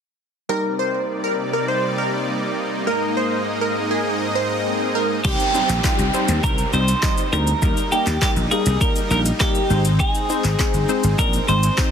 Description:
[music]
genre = dance-pop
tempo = 101 BPM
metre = 4/4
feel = straight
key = C minor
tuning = A4 = 438 Hz
[part]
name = plucky unison lead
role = melody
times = 0.5-5.1 s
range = Ab4 to C5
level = -23 LUFS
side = right 1 dB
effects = ping-pong delay
[part]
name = funky polysynth comp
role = accompaniment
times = 0.5-11.9 s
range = G3 to Eb5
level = -26 LUFS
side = left 1 dB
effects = chorus, sidechain pumping
[part]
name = supersaw chords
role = sustained chords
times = 0.5-11.9 s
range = Ab2 to Eb5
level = -26 LUFS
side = right 1 dB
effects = sidechain pumping
[part]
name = swell and downlifter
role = sound effects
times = 3.7-10.0 s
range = none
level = -30 LUFS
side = equal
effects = none
[part]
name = twelve-string electric guitar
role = melody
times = 5.2-11.9 s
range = G4 to C5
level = -22 LUFS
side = equal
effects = ping-pong delay
[part]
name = vintage slap bass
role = bass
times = 5.2-11.7 s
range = G1 to Eb2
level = -20 LUFS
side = equal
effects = sidechain pumping
[part]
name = deep house drum kit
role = drums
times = 5.2-11.9 s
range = crash cymbal, handclaps, hi-hat, kick drum, shaker, snare drum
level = -22 LUFS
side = equal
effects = none
[sound]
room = light reverb, digital ambience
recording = dense, heavily limited modern master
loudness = -17 LUFS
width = side -7 dB against mid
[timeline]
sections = 0.5-5.2 A section; 5.2-11.9 B section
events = swell 3.7-5.2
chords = 0.5 Cm7; 2.9 Absus2; 5.2 Cm; 7.6 Eb; 9.7 Ab

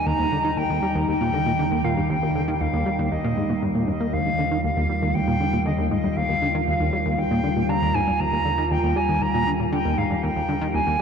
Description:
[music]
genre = ambient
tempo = 118 BPM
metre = 4/4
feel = straight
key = Eb major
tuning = A4 = 439 Hz
[part]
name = silver concert flute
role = melody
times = 0.0-11.0 s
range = Eb5 to Bb5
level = -25 LUFS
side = equal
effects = analog delay
[part]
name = evolving wavetable pad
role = sustained chords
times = 0.0-11.0 s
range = Eb2 to F4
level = -25 LUFS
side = equal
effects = chorus, built-in reverb, phaser
[part]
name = plucky analog bass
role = riff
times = 0.1-11.0 s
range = Eb2 to Bb3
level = -25 LUFS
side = equal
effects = wide subtle chorus, cassette tape, analog delay
[sound]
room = wet huge ambient reverb, RT60 8.2 s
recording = dark, warm production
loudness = -20 LUFS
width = side -6 dB against mid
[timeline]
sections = 0.0-11.0 A section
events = none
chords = 0.0 Ebadd9

